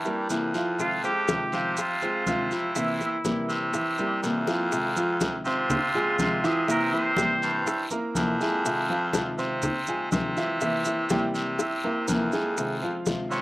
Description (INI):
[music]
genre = latin, Cuban son and guajira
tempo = 122 BPM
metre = 4/4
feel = straight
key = F minor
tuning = A4 = 441 Hz
[part]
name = nylon-string guitar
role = accompaniment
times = 0.0-13.4 s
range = C3 to F4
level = -30 LUFS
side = left 1 dB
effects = slapback echo
[part]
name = raspy baritone saxophone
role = bass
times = 0.0-13.4 s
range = F2 to C3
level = -28 LUFS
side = equal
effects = none
[part]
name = warm grand piano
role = arpeggios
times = 0.1-13.4 s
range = E3 to E6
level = -31 LUFS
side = right 2 dB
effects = none
[part]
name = congas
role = percussion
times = 0.1-13.4 s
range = none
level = -33 LUFS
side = left 1 dB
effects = none
[part]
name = maracas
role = percussion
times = 0.1-13.4 s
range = none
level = -37 LUFS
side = right 4 dB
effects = none
[part]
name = bongos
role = percussion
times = 0.3-13.3 s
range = none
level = -32 LUFS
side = left 4 dB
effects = none
[part]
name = guiro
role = percussion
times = 0.3-13.4 s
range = none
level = -42 LUFS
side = left 2 dB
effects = none
[part]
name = trumpet with straight mute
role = melody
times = 0.8-7.9, 13.3-13.4 s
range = E4 to Db5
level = -28 LUFS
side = right 1 dB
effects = slapback echo
[sound]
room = little or no reverb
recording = recorded outdoors, with no room sound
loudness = -24 LUFS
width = side -18 dB against mid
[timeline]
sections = 0.0-4.7 A section; 4.7-13.4 B section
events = drum fill 4.5, 11.6-12.6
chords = 0.0 C7; 0.8 Fm7; 2.8 C7; 4.7 Fm7; 6.7 C7; 8.7 Fm7; 10.6 C7; 12.6 Fm7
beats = 0.30 | 0.79 1.28 1.77 2.27 | 2.76 3.25 3.74 4.23 | 4.72 5.21 5.71 6.20 | 6.69 7.18 7.67 8.16 | 8.65 9.14 9.63 10.12 | 10.62 11.11 11.60 12.09 | 12.58 13.07